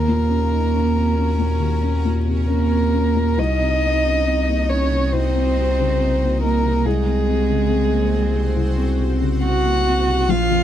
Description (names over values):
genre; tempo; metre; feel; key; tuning
neoclassical piano and strings; 69 BPM; 4/4; rubato; unclear; A4 = 440 Hz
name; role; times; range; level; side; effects
warm violin; melody; 0.0-10.6 s; Ab4 to Gb5; -23 LUFS; left 3 dB; none
dark cello; second line; 0.0-10.6 s; Ab3 to Gb4; -23 LUFS; right 8 dB; none
felt-muted upright piano; accompaniment; 0.0-10.6 s; Bb1 to Eb4; -23 LUFS; left 4 dB; none
granular cloud pad; sustained chords; 0.0-10.6 s; C4 to Eb5; -33 LUFS; equal; built-in reverb
saturated sub bass; bass; 0.0-10.6 s; Bb1 to Eb2; -21 LUFS; equal; none
room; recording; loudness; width
little or no reverb; close, detailed microphones; -16 LUFS; side -10 dB against mid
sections
0.0-10.6 A section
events
none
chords
0.0 Ebm7; 3.4 Cdim